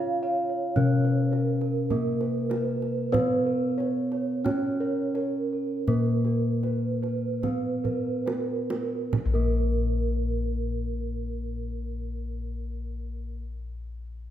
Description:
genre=Javanese gamelan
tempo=34-57 BPM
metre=4/4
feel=straight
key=unclear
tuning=A4 = 440 Hz
part: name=gamelan-type bronze metallophone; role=melody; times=0.0-13.4 s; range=Bb3 to F4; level=-30 LUFS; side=right 2 dB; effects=none
part: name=gamelan-type bossed gongs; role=arpeggios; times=0.0-13.4 s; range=Bb4 to F5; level=-34 LUFS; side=left 4 dB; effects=none
part: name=gamelan-type bronze metallophone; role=arpeggios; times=0.0-13.4 s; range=Bb4 to F5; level=-34 LUFS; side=right 8 dB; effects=none
part: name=gamelan-type bossed gongs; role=bass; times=0.0-13.3 s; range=Bb1 to Cb5+35c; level=-29 LUFS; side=left 3 dB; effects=none
part: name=kendang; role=percussion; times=0.8-10.0 s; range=none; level=-33 LUFS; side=right 4 dB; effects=none
room=moderate recital hall reverb, RT60 1.7 s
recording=none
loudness=-25 LUFS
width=side -11 dB against mid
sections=0.0-9.1 A section; 9.1-14.3 B section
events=slowing down 0.0-9.1; drum fill 7.8-9.1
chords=none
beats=0.77 1.91 | 3.14 4.46 5.88 7.43 | 9.14 10.93 12.71

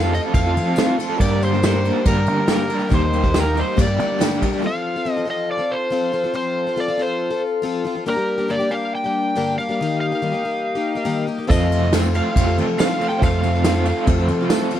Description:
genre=folk rock and heartland rock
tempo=140 BPM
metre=4/4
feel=straight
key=unclear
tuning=A4 = 438 Hz
part: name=overdriven slide guitar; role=melody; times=0.0-14.0 s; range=Bb4 to G5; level=-23 LUFS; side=equal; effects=none
part: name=dark grand piano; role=accompaniment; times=0.0-4.6, 11.5-14.8 s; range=A3 to C5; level=-29 LUFS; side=right 7 dB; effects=none
part: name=picked plugged-in twelve-string acoustic guitar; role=accompaniment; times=0.0-14.8 s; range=G2 to A4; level=-24 LUFS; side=left 4 dB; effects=none
part: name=mellow tonewheel organ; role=sustained chords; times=0.0-14.8 s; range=A4 to Eb6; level=-33 LUFS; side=equal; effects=slow rotary speaker
part: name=raw garage guitar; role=riff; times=0.0-4.6, 11.5-14.8 s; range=F2 to Bb4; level=-23 LUFS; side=right 1 dB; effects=overdrive, tremolo
part: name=fingered electric bass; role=bass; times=0.0-4.2, 11.5-14.5 s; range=Eb2 to G3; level=-21 LUFS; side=equal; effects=none
part: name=soft brush drum kit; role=drums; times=0.1-4.5, 11.5-14.8 s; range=crash cymbal, kick drum, ride cymbal, snare drum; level=-22 LUFS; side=right 1 dB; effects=none
part: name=tambourine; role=percussion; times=0.8-4.3, 11.9-14.6 s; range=none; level=-37 LUFS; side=right 5 dB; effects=none
room=light reverb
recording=none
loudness=-17 LUFS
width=side -11 dB against mid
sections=0.0-4.6 A section; 4.6-14.8 A section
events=none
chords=0.0 F; 1.2 Gm; 2.9 Eb; 3.8 Gm; 4.6 F; 8.1 Gm; 9.8 Eb; 11.5 F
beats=0.34 0.77 | 1.20 1.63 2.06 2.49 | 2.92 3.35 3.78 4.21 | 4.64 5.07 5.50 5.93 | 6.36 6.79 7.21 7.64 | 8.07 8.50 8.93 9.36 | 9.79 10.22 10.65 11.07 | 11.50 11.93 12.36 12.79 | 13.22 13.64 14.07 14.50

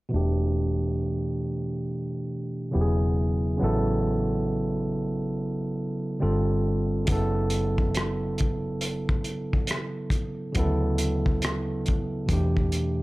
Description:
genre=R&B, neo-soul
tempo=69 BPM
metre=4/4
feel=swing 63% on 16ths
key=E dorian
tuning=A4 = 440 Hz
part: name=overdriven tine electric piano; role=accompaniment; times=0.1-13.0 s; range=B2 to A4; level=-27 LUFS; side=right 1 dB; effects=low-pass filter, plate reverb
part: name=vintage muted fingered electric bass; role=bass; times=0.1-13.0 s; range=E1 to E2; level=-28 LUFS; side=left 1 dB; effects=none
part: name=cloth-damped thuddy drum kit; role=drums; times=7.1-13.0 s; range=hi-hat, kick drum, rim click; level=-27 LUFS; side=equal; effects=none
room=light reverb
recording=none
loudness=-24 LUFS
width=side -20 dB against mid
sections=0.1-13.0 A section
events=filter sweep on tine electric piano 0.1-13.0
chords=0.1 Em7; 2.7 E; 3.6 Aadd9; 6.2 G5; 7.1 F#m7; 10.6 Dmaj7; 12.3 Em7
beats=| 0.12 0.99 1.86 2.73 | 3.60 4.47 5.34 6.21 | 7.08 7.95 8.82 9.69 | 10.56 11.43 12.30

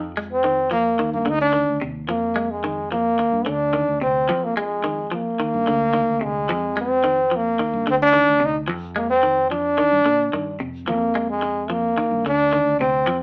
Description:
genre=afrobeat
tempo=109 BPM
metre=4/4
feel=straight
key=unclear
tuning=A4 = 436 Hz
part: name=clean electric guitar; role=arpeggios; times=0.0-13.2 s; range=C3 to Ab3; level=-27 LUFS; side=left 1 dB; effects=none
part: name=fingered electric bass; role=bass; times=0.0-13.2 s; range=D2 to Bb2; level=-31 LUFS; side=equal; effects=none
part: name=clear trombone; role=melody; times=0.3-13.2 s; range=Ab3 to Eb4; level=-18 LUFS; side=equal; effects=none
room=moderate studio reverb, RT60 0.6 s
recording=band playing live in one room, small speaker sound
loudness=-18 LUFS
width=side -30 dB against mid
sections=0.0-13.2 A section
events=none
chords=0.0 Fm7; 1.0 Ebmaj7(no3); 2.1 Fm7; 3.2 Ebmaj7(no3); 4.3 Fm7; 5.4 Ebmaj7(no3); 6.5 Fm7; 7.6 Ebmaj7(no3); 8.7 Fm7; 9.8 Ebmaj7; 10.9 Fm; 12.0 Ebmaj7(no3)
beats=0.45 1.00 1.55 | 2.10 2.65 3.20 3.75 | 4.30 4.85 5.40 5.95 | 6.50 7.05 7.60 8.15 | 8.70 9.25 9.79 10.34 | 10.89 11.44 11.98 12.53 | 13.08

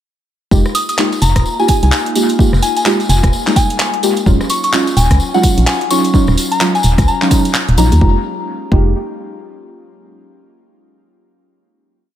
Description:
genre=UK garage, two-step garage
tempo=128 BPM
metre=4/4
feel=swing 60% on 16ths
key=F phrygian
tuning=A4 = 440 Hz
part: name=airy breathy pad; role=sustained chords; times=0.5-8.2 s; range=Gb3 to G4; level=-25 LUFS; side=equal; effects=chorus, sidechain pumping
part: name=deep mellow chord stab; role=stabs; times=0.5-8.9 s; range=Gb3 to G4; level=-17 LUFS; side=right 1 dB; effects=chorus, analog delay
part: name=organ-like FM bass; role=bass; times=0.5-8.9 s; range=Eb1 to Eb2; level=-12 LUFS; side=equal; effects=sidechain pumping
part: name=electronic kick drum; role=drums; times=0.5-8.8 s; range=none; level=-14 LUFS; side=equal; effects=none
part: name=tambourine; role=percussion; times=0.5-8.0 s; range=none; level=-24 LUFS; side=left 2 dB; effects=none
part: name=soft synth bell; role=melody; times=0.7-8.0 s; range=Gb5 to Eb6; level=-19 LUFS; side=left 2 dB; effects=chorus, analog delay
part: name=house drum kit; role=drums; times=0.7-8.0 s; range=handclaps, hi-hat, rim click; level=-20 LUFS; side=equal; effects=analog delay
room=light reverb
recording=echo-heavy mix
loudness=-11 LUFS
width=side -11 dB against mid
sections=0.5-8.0 groove; 8.0-9.9 final chord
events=none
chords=0.5 Fm11; 4.3 Ebm11; 8.0 Fm11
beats=| 0.52 0.98 1.45 1.92 | 2.39 2.86 3.33 3.80 | 4.27 4.73 5.20 5.67 | 6.14 6.61 7.08 7.55 | 8.02 8.48

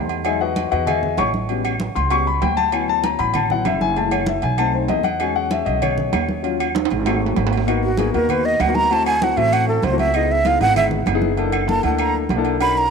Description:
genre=Afro-Cuban jazz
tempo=194 BPM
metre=4/4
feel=straight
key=unclear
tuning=A4 = 443 Hz
part: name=dark concert grand piano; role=accompaniment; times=0.0-12.8 s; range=F#3 to C#6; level=-21 LUFS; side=left 9 dB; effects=none
part: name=upright bass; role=bass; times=0.0-12.9 s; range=F#1 to E2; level=-24 LUFS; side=right 2 dB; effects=none
part: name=agogo bells and timbales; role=percussion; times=0.1-12.8 s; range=none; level=-25 LUFS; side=right 16 dB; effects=none
part: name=congas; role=percussion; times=0.2-12.9 s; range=none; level=-28 LUFS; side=right 1 dB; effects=none
part: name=claves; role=percussion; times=0.3-12.8 s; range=none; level=-35 LUFS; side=left 8 dB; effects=none
part: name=breathy mellow silver concert flute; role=melody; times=7.8-12.9 s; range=F#4 to B5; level=-19 LUFS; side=right 3 dB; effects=none
room=moderate echo chamber reverb, RT60 2.7 s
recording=1960s-style stereo with parts hard left and right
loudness=-16 LUFS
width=side -5 dB against mid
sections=0.0-7.7 A section; 7.7-12.9 A section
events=grand piano solo 0.0-7.7; drum fill 6.7-7.7; flute solo 7.7-12.9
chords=0.3 Emaj9; 1.5 A13; 2.7 D69; 4.0 F#m7; 4.6 B7b9; 5.2 E69; 6.4 D#m9; 7.1 G#7b9; 7.7 G#m9; 8.9 D9; 10.1 C#m9; 11.4 F#7alt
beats=| 0.26 0.57 0.88 1.19 | 1.50 1.80 2.11 2.42 | 2.73 3.04 3.35 3.66 | 3.97 4.28 4.59 4.90 | 5.21 5.51 5.82 6.13 | 6.44 6.75 7.06 7.37 | 7.67 7.98 8.29 8.60 | 8.91 9.22 9.53 9.84 | 10.15 10.46 10.76 11.07 | 11.38 11.69 12.00 12.30 | 12.61

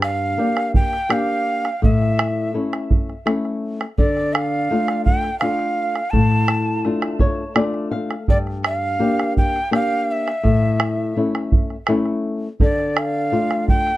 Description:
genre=andean folk, Andean ensemble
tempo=84 BPM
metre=3/4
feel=straight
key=D harmonic minor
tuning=A4 = 440 Hz
part: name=breathy bright quena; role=melody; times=0.0-14.0 s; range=D5 to A5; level=-22 LUFS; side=right 1 dB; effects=tape echo
part: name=flamenco guitar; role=accompaniment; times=0.0-13.9 s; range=G2 to F5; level=-21 LUFS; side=left 2 dB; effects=none
part: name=bombo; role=percussion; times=0.0-14.0 s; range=none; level=-19 LUFS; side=right 1 dB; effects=none
room=light reverb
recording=dark, warm production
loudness=-17 LUFS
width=side -16 dB against mid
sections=0.0-14.0 A section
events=nylon-string guitar fill 6.9-8.3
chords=0.0 Gm; 1.8 A; 4.0 Dm; 8.3 Gm; 10.4 A; 12.6 Dm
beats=0.39 1.10 | 1.82 2.54 3.26 | 3.98 4.70 5.41 | 6.13 6.85 7.57 | 8.29 9.01 9.73 | 10.45 11.17 11.89 | 12.61 13.33

